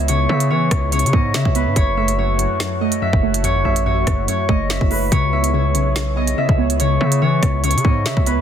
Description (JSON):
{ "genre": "hip hop, drill", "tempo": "143 BPM", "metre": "4/4", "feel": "half-time", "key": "C# minor", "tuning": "A4 = 440 Hz", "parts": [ { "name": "Celtic harp", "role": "melody", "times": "0.0-8.4 s", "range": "B4 to E5", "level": "-21 LUFS", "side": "right 1 dB", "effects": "none" }, { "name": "warbly dusty pluck", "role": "accompaniment", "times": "0.0-8.4 s", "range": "F#2 to B3", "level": "-22 LUFS", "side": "left 1 dB", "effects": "chorus" }, { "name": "warbly tape-like pad", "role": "sustained chords", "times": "0.0-8.4 s", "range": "A3 to C#5", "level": "-28 LUFS", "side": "equal", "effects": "chorus, built-in reverb" }, { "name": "distorted 808-style bass", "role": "bass", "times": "0.0-8.4 s", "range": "F#1 to E3", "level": "-20 LUFS", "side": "equal", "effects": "distortion" }, { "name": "drill drum kit", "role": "drums", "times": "0.1-8.4 s", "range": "hi-hat, kick drum, rim click, snare drum", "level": "-19 LUFS", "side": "equal", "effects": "none" }, { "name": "warm velvety synth lead", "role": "second line", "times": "6.4-8.4 s", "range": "C#5 to E5", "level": "-31 LUFS", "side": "left 2 dB", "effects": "none" } ], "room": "little or no reverb", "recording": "dense, heavily limited modern master", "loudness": "-15 LUFS", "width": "side -9 dB against mid", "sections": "0.0-8.4 A section", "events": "none", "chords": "0.0 C#m7; 1.8 F#m7; 5.1 C#m7" }